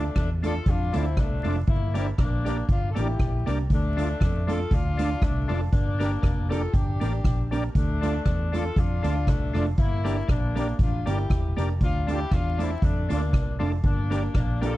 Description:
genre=ska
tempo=118 BPM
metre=4/4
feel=swing 55% on 8ths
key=D minor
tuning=A4 = 440 Hz
part: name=mellow horn section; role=melody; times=0.0-14.8 s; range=A3 to A4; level=-32 LUFS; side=left 3 dB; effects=none
part: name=electric guitar at the edge of break-up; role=accompaniment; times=0.0-14.7 s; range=A3 to Bb4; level=-32 LUFS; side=right 5 dB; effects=none
part: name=overdriven tonewheel organ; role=stabs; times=0.0-14.7 s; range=D4 to D5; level=-36 LUFS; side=left 4 dB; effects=chorus vibrato, tape echo
part: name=vintage muted fingered electric bass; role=bass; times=0.0-14.8 s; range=E1 to F2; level=-26 LUFS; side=equal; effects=none
part: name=street-band drum kit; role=drums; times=0.2-14.7 s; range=hi-hat, kick drum, rim click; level=-26 LUFS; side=equal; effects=vintage 12-bit sampler grit
room=small room ambience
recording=dark, warm production, vinyl crackle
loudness=-22 LUFS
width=side -16 dB against mid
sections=0.0-14.8 A section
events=none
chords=0.0 Dm; 1.7 Gm; 3.7 Dm; 5.7 Gm; 7.8 Dm; 9.8 Gm; 11.8 Dm; 13.8 Gm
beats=0.15 0.66 1.17 | 1.68 2.18 2.69 3.19 | 3.70 4.21 4.71 5.22 | 5.72 6.23 6.74 7.24 | 7.75 8.26 8.76 9.27 | 9.78 10.29 10.79 11.30 | 11.81 12.32 12.82 13.33 | 13.84 14.35

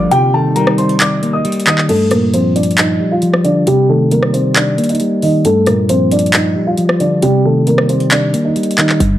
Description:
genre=hip hop, trap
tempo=135 BPM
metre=4/4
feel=half-time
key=G minor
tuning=A4 = 440 Hz
part: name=dark baby grand piano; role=melody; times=0.0-9.0 s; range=G3 to Eb6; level=-15 LUFS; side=right 1 dB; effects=low-pass filter, ping-pong delay
part: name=semi-hollow electric guitar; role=accompaniment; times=0.0-9.2 s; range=G2 to Bb3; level=-14 LUFS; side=left 1 dB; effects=low-pass filter
part: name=hollow soft pad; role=sustained chords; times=0.0-1.9 s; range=C3 to Eb4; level=-22 LUFS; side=equal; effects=chorus
part: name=hard-hitting 808-style bass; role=bass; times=0.0-0.1, 9.0-9.2 s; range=G1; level=-16 LUFS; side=right 1 dB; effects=none
part: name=trap drum kit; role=drums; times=0.1-9.1 s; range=crash cymbal, handclaps, hi-hat, rim click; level=-17 LUFS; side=equal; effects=overdrive
room=light reverb, digital ambience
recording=dark, warm production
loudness=-10 LUFS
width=side -13 dB against mid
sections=0.0-1.9 A section; 1.9-9.2 B section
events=kick muted 0.1-1.9, 1.9-9.0; filter sweep 1.9-9.2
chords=0.1 Eb6; 1.9 Gm7; 3.7 Cm7; 5.4 Gm7; 7.2 Eb6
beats=| 0.11 0.56 1.00 1.45 | 1.89 2.34 2.78 3.23 | 3.67 4.11 4.56 5.00 | 5.45 5.89 6.34 6.78 | 7.22 7.67 8.11 8.56 | 9.00

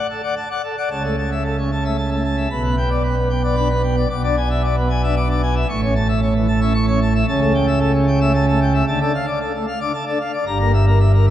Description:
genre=classical, organ toccata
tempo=113 BPM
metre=3/4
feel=straight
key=unclear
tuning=A4 = 439 Hz
part: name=pipe organ, plenum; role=solo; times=0.0-11.3 s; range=G1 to D6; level=-16 LUFS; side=equal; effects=none
room=wet church reverb, RT60 3.0 s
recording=dark, warm production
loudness=-16 LUFS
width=side -12 dB against mid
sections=0.9-11.3 A section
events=none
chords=0.0 D; 0.9 A/C#; 2.5 G/B; 4.1 E7/B; 5.7 A; 7.3 A7/C#; 8.9 Dm; 10.5 Edim/G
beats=0.36 | 0.90 1.44 1.98 | 2.51 3.04 3.57 | 4.10 4.63 5.16 | 5.69 6.22 6.74 | 7.27 7.80 8.33 | 8.86 9.39 9.92 | 10.46 11.00

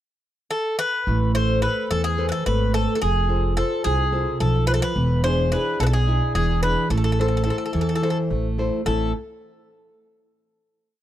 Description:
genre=greek folk, Greek bouzouki band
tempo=216 BPM (eighths)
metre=7/8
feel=straight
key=A harmonic minor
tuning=A4 = 440 Hz
part: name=Greek bouzouki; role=melody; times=0.5-9.1 s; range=G#4 to C5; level=-24 LUFS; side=left 1 dB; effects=none
part: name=nylon-string guitar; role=accompaniment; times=1.1-9.1 s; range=A2 to C5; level=-25 LUFS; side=right 1 dB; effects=none
part: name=upright bass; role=bass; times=1.1-9.1 s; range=E1 to E2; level=-22 LUFS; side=equal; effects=none
room=small room ambience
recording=dry, close 1970s-style studio recording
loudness=-19 LUFS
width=side -12 dB against mid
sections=0.0-1.1 pickup bar; 1.1-8.9 A section; 8.9-10.8 final chord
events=none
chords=0.0 N.C.; 1.1 Amadd9; 3.0 F; 5.0 E7; 6.9 Am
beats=0.24 0.51 0.79 | 1.07 1.35 1.63 1.91 2.18 2.46 2.74 | 3.02 3.29 3.57 3.85 4.13 4.41 4.68 | 4.96 5.24 5.52 5.79 6.07 6.35 6.63 | 6.91 7.18 7.46 7.74 8.02 8.29 8.57 | 8.85

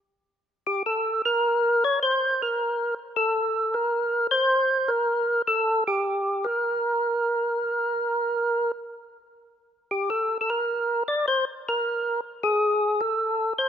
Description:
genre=jazz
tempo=104 BPM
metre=4/4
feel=swing 69% on 8ths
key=unclear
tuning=A4 = 444 Hz
part: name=percussive tonewheel organ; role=solo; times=0.7-13.7 s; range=G4 to D5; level=-22 LUFS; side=equal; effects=slow rotary speaker, overdrive
room=light reverb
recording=rough home demo mix, nothing above 7.7 kHz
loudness=-22 LUFS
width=side -8 dB against mid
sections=0.0-13.7 A section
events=none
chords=none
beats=0.25 0.83 1.41 | 1.99 2.57 3.15 3.72 | 4.30 4.88 5.46 6.04 | 6.62 7.20 7.78 8.35 | 8.93 9.51 10.09 10.67 | 11.25 11.83 12.40 12.98 | 13.56

